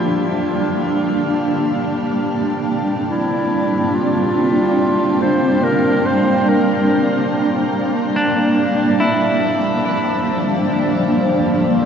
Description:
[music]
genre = ambient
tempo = free time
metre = none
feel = none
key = unclear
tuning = A4 = 441 Hz
[part]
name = warm clarinet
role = melody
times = 0.0-7.3 s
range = E4 to C5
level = -22 LUFS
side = equal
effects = diffuse ambient delay
[part]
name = granular cloud pad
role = sustained chords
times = 0.0-11.9 s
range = F3 to D4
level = -16 LUFS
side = equal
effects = built-in reverb
[part]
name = pedal harmonium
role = drone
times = 0.0-11.9 s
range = G3 to D4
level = -27 LUFS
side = left 1 dB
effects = none
[part]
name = clean electric guitar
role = arpeggios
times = 8.2-11.2 s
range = D4 to E4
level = -20 LUFS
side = equal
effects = diffuse ambient delay
[sound]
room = wet shimmer reverb, RT60 8.0 s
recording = dark, warm production, nothing above 7.5 kHz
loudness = -15 LUFS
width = side -7 dB against mid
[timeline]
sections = 0.0-11.9 A section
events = fade-out on harmonium 0.0-11.9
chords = 0.0 Gm7; 0.6 Bbadd9; 7.3 Gm7

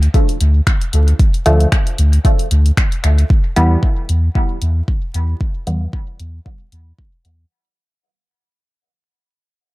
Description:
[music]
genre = dub techno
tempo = 114 BPM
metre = 4/4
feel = swing 56% on 16ths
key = E phrygian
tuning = A4 = 438 Hz
[part]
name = warm sub bass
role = bass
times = 0.0-7.4 s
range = D2 to E2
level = -12 LUFS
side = equal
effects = sidechain pumping
[part]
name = deep house drum kit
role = drums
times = 0.0-7.4 s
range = finger snaps, hi-hat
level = -24 LUFS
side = left 2 dB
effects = dub echo
[part]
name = electronic kick drum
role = drums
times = 0.1-7.1 s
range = none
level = -14 LUFS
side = equal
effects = none
[part]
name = filtered dub chord stab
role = stabs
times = 1.5-5.9 s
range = D3 to B3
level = -19 LUFS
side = equal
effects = chorus, phaser, sidechain pumping, dub echo
[sound]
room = digital ambience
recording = echo-heavy mix, vinyl crackle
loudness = -12 LUFS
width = side -19 dB against mid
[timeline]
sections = 0.0-3.3 A section; 3.3-7.5 B section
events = fade-out 3.3-7.5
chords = none

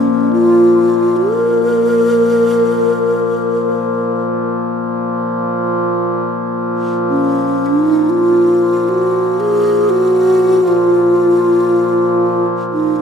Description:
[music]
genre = world meditative, free-time meditation music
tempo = free time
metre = none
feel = none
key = Bb minor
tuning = A4 = 440 Hz
[part]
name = mellow hollow alto flute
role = melody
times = 0.0-13.0 s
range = Db4 to Bb4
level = -12 LUFS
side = equal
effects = none
[part]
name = hand-pumped harmonium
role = drone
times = 0.0-13.0 s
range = Bb2 to F3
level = -18 LUFS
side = equal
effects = stereo widening
[part]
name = bronze singing bowl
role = texture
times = 0.0-7.2 s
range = Bb3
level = -22 LUFS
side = left 9 dB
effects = none
[sound]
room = wet church reverb, RT60 3.3 s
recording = dark, warm production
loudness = -11 LUFS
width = side -6 dB against mid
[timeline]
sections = 0.0-13.0 A section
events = none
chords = none

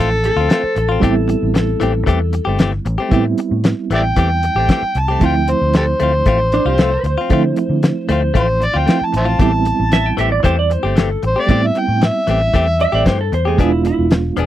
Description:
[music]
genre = straight-eighth soul blues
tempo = 115 BPM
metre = 4/4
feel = straight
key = A minor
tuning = A4 = 440 Hz
[part]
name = overdriven harmonica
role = melody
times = 0.0-13.1 s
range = G4 to A5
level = -18 LUFS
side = equal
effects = none
[part]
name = reed electric piano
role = accompaniment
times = 0.0-14.5 s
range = F3 to F4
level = -21 LUFS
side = right 6 dB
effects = fast tremolo
[part]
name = direct-recorded clean electric guitar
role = stabs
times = 0.0-14.5 s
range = E3 to G#4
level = -20 LUFS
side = left 6 dB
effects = none
[part]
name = vintage muted fingered electric bass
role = bass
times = 0.0-14.5 s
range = E1 to D3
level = -18 LUFS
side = equal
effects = none
[part]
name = cloth-damped thuddy drum kit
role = drums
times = 0.2-14.5 s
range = hi-hat, kick drum, snare drum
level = -15 LUFS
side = left 1 dB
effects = none
[part]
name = clean lap steel guitar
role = second line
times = 0.3-2.6, 6.5-14.1 s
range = D4 to G5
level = -21 LUFS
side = right 1 dB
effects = none
[sound]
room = little or no reverb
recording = dry, close 1970s-style studio recording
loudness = -13 LUFS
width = side -13 dB against mid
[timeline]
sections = 0.0-14.5 A section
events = none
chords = 0.0 Dm7; 1.0 Am7; 5.2 Dm7; 9.4 Am7; 13.6 E7b9

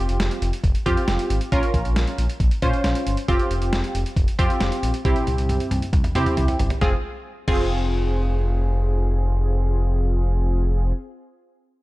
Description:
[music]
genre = synth-pop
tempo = 136 BPM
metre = 4/4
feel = straight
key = F harmonic minor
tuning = A4 = 442 Hz
[part]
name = funky polysynth comp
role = accompaniment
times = 0.0-10.9 s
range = C4 to C5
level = -25 LUFS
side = right 1 dB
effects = chorus
[part]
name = smooth gliding synth bass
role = bass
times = 0.0-10.9 s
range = F1 to C3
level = -22 LUFS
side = equal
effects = none
[part]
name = boom bap sampler-style drum kit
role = drums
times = 0.1-7.6 s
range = crash cymbal, hi-hat, kick drum, snare drum, toms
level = -23 LUFS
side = equal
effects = none
[sound]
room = light reverb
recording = none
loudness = -19 LUFS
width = side -19 dB against mid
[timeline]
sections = 0.0-6.8 A section; 6.8-10.3 B section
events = drum fill 5.1-6.8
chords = 0.0 Fsus2; 1.5 Bbm; 3.3 Fsus2; 5.1 C; 6.8 Fm

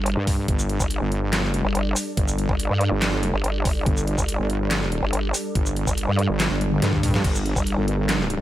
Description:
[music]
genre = heavy wobble dubstep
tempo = 142 BPM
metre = 4/4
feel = half-time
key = G minor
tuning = A4 = 445 Hz
[part]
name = supersaw pad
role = sustained chords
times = 0.0-8.4 s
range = G3 to D5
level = -28 LUFS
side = right 1 dB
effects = phaser, sidechain pumping, low-pass filter
[part]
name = vowel-sweep wobble bass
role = bass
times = 0.0-7.8 s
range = G1 to G2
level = -23 LUFS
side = equal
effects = chorus, overdrive
[part]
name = dubstep drum kit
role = drums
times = 0.1-8.4 s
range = crash cymbal, handclaps, hi-hat, shaker, snare drum, toms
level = -26 LUFS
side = equal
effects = overdrive
[part]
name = wobble bass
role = bass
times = 0.2-8.4 s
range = G1 to G2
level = -24 LUFS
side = equal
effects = chorus, overdrive
[part]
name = electronic kick drum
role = drums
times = 0.3-7.6 s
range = none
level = -24 LUFS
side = equal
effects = none
[sound]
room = little or no reverb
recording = none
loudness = -20 LUFS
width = side -14 dB against mid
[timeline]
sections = 0.0-8.4 A section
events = drum fill 6.4-7.2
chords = 0.0 Gmadd9

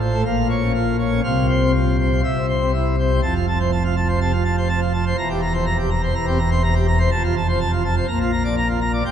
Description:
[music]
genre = classical, organ toccata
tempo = 123 BPM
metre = 4/4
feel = straight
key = F major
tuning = A4 = 440 Hz
[part]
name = pipe organ, plenum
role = solo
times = 0.0-9.1 s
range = E1 to Bb5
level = -17 LUFS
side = equal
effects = none
[sound]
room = wet cathedral reverb, RT60 5.2 s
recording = minimal, uncompressed stereo recording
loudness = -17 LUFS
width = side -9 dB against mid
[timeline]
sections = 0.0-3.2 A section; 3.2-9.1 B section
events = none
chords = 0.3 Bbm; 1.2 Csus4; 2.2 C; 3.2 F; 5.2 C7/E; 7.1 F; 8.1 Bb

